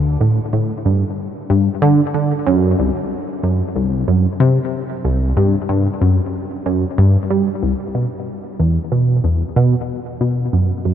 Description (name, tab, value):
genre	ambient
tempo	93 BPM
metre	4/4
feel	straight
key	B phrygian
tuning	A4 = 440 Hz
part	tight sequenced synth	solo	0.0-10.9 s	C2 to G3	-15 LUFS	equal	chorus, ping-pong delay
room	moderate huge ambient reverb, RT60 7.6 s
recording	none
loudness	-15 LUFS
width	side -9 dB against mid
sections	0.0-7.9 A section; 7.9-10.9 B section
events	none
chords	none